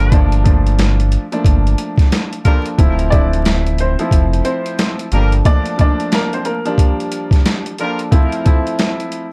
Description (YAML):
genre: hip hop, boom-bap hip-hop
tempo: 90 BPM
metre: 4/4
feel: swing 63% on 16ths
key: unclear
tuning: A4 = 440 Hz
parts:
  - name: dark grand piano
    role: accompaniment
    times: 0.0-9.2 s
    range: F3 to A4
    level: -23 LUFS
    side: equal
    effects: cassette tape, high-pass filter, low-pass filter, plate reverb
  - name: clear horn section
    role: stabs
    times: 0.0-8.0 s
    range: G3 to Bb4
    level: -28 LUFS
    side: equal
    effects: high-pass filter, low-pass filter, tape echo
  - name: sub bass with octave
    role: bass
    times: 0.0-5.4 s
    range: D1 to G1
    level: -17 LUFS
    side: equal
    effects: none
  - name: boom bap sampler-style drum kit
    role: drums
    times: 0.1-9.3 s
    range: hi-hat, kick drum, snare drum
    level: -16 LUFS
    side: equal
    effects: none
  - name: clear upright piano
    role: melody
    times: 3.1-7.4 s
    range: Bb3 to D5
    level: -24 LUFS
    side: equal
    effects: high-pass filter, low-pass filter, tape echo
room: light reverb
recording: dark, warm production, vinyl crackle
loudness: -15 LUFS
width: mono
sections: 0.0-9.3 A section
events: none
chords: 0.0 Gm7; 2.8 Dm9; 5.1 Gm7; 8.1 Fmaj7